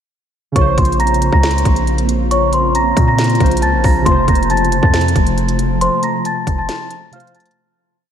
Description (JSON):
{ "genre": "hip hop, trap", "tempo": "137 BPM", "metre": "4/4", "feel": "half-time", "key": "Bb harmonic minor", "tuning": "A4 = 439 Hz", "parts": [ { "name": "warbly lo-fi synth keys", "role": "accompaniment", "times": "0.5-7.6 s", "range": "C3 to C5", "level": "-22 LUFS", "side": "right 1 dB", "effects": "chorus" }, { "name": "celesta", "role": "melody", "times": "0.6-7.5 s", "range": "C5 to Bb6", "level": "-17 LUFS", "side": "equal", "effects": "diffuse ambient delay" }, { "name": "glassy FM pad", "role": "sustained chords", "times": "0.9-7.5 s", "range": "C3 to F4", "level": "-21 LUFS", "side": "equal", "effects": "ensemble chorus, built-in reverb" }, { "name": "hard-hitting 808-style bass", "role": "bass", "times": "0.6-6.7 s", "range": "F1 to Bb2", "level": "-17 LUFS", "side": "equal", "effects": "none" }, { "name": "trap drum kit", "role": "drums", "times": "0.6-7.6 s", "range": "hi-hat, kick drum, snare drum", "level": "-18 LUFS", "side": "equal", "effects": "vintage 12-bit sampler grit" } ], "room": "moderate cathedral reverb, RT60 5.5 s", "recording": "dreamy mix soaked in reverb", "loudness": "-12 LUFS", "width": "side -9 dB against mid", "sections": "0.6-7.6 verse", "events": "fade-out 5.8-7.6; break 6.7-7.6", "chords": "0.6 Bbmadd9; 4.1 F" }